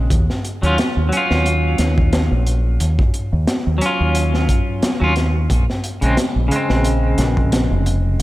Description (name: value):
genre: trip hop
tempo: 89 BPM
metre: 4/4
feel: swing 56% on 16ths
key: unclear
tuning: A4 = 443 Hz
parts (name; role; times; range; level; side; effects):
- clean electric guitar; accompaniment; 0.0-8.2 s; Db3 to F4; -20 LUFS; equal; tremolo, vintage 12-bit sampler grit, tape echo
- deep dub fingered electric bass; bass; 0.0-8.2 s; F1 to Eb2; -17 LUFS; equal; none
- crunchy breakbeat drum kit; drums; 0.1-8.2 s; hi-hat, kick drum, snare drum; -20 LUFS; equal; none
room: moderate plate reverb, RT60 1.9 s, studio reverb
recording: dreamy mix soaked in reverb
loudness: -15 LUFS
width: side -17 dB against mid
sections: 0.0-8.2 A section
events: none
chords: 0.1 Ebm7; 5.5 Bbm7